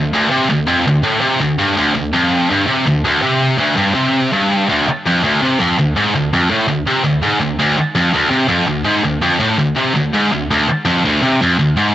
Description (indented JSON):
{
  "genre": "metal",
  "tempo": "165 BPM",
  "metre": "4/4",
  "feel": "straight",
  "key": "D minor",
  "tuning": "A4 = 440 Hz",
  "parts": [
    { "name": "scooped high-gain guitar", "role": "solo", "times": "0.0-11.9 s", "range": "D2 to C3", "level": "-12 LUFS", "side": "equal", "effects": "distortion, cassette tape, tape echo" }
  ],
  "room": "light reverb",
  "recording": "home recording on cassette, nothing above 7.8 kHz",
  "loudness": "-12 LUFS",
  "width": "side -12 dB against mid",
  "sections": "0.0-4.7 A section; 4.7-11.9 B section",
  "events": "none",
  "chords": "none"
}